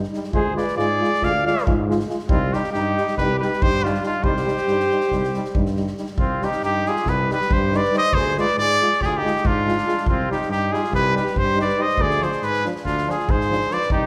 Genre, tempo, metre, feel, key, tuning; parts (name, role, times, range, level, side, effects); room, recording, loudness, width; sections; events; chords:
balkan folk, Balkan brass band; 278 BPM (eighths); 9/8; straight; C harmonic minor; A4 = 440 Hz
mellow tuba; bass; 0.0-14.1 s; C2 to Ab2; -29 LUFS; equal
street-band drum kit; percussion; 0.0-14.0 s; kick drum, snare drum; -28 LUFS; equal
clear euphonium; accompaniment; 0.1-13.8 s; D4 to F4; -32 LUFS; equal
clear trombone; accompaniment; 0.2-13.8 s; F3 to Ab3; -32 LUFS; equal
warm trumpet; melody; 0.3-14.1 s; F4 to F5; -24 LUFS; equal
warm flugelhorn; second line; 0.3-14.1 s; C4 to D5; -28 LUFS; equal
wet recital hall reverb, RT60 1.4 s; recorded in a church or concert hall; -21 LUFS; mono
0.0-6.2 A section; 6.2-14.1 A section
0.3 Ddim; 2.3 Cm; 8.1 Ddim; 10.1 Cm; 12.0 Ddim